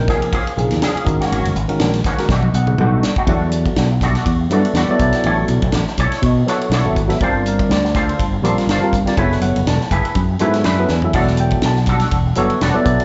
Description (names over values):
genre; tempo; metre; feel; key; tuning
electric jazz fusion; 122 BPM; 4/4; swing 56% on 16ths; G# minor, E dorian from 3.3 s; A4 = 440 Hz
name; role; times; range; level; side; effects
tine electric piano; accompaniment; 0.0-13.0 s; B#2 to A5; -22 LUFS; equal; phaser, slapback echo
fingered electric bass; bass; 0.0-13.0 s; E1 to B2; -20 LUFS; equal; none
electric guitar with an envelope filter; stabs; 0.1-13.0 s; D#3 to C#5; -25 LUFS; equal; analog chorus, slapback echo
tight funk drum kit; drums; 0.1-13.0 s; hi-hat, kick drum, ride cymbal, snare drum, splash cymbal, toms; -24 LUFS; equal; none
room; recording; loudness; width
light reverb, small room ambience; live gig heard through the venue's PA, club reverb, nothing above 7.8 kHz; -17 LUFS; mono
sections
0.0-3.3 A section; 3.3-13.0 A section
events
drum fill 2.3-3.3, 10.9; tine electric piano fill 10.2-11.1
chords
0.0 D#9sus4; 1.1 G#9sus4; 2.3 B7b13; 3.3 Em11; 5.0 Bm11; 7.2 Gm11; 9.2 F#m11; 11.1 Em11